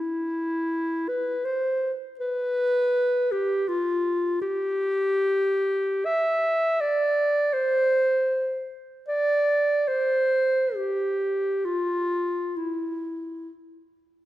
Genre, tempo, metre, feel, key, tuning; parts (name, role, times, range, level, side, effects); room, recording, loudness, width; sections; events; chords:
classical, free, expressive piece for unaccompanied clarinet; free time; C major; A4 = 440 Hz
warm clarinet; solo; 0.0-13.5 s; E4 to E5; -23 LUFS; equal
moderate concert hall reverb, RT60 1.9 s; -22 LUFS; side -14 dB against mid
0.0-14.3 A section